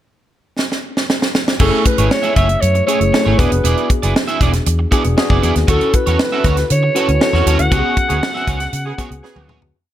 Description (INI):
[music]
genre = polished 1980s jazz-funk pop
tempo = 118 BPM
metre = 4/4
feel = straight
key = F# minor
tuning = A4 = 440 Hz
[part]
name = tight funk drum kit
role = drums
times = 0.6-9.7 s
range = crash cymbal, hi-hat, kick drum, snare drum, toms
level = -17 LUFS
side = equal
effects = gated reverb
[part]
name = growling alto saxophone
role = melody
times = 1.6-9.5 s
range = A4 to F#5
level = -18 LUFS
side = right 1 dB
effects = none
[part]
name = tine electric piano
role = accompaniment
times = 1.6-9.8 s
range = A3 to B4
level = -22 LUFS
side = left 5 dB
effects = lush chorus
[part]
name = electric guitar at the edge of break-up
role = riff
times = 1.6-9.7 s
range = A3 to E5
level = -21 LUFS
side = right 5 dB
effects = analog chorus
[part]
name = vintage muted fingered electric bass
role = bass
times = 1.6-9.7 s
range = E1 to D3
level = -17 LUFS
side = equal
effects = none
[part]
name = warm horn section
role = second line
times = 8.1-9.6 s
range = C#3 to G#4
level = -30 LUFS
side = right 5 dB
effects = none
[sound]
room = light reverb, small room ambience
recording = none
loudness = -13 LUFS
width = side -12 dB against mid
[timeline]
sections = 0.0-1.6 pickup bar; 1.6-9.7 verse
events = drum fill 0.6-1.6, 9.2-9.7; fade-out 7.7-9.7; band accent 7.7-9.7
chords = 0.0 N.C.; 1.6 F#m9; 3.4 E7; 5.7 Dmaj7; 7.7 C#7sus4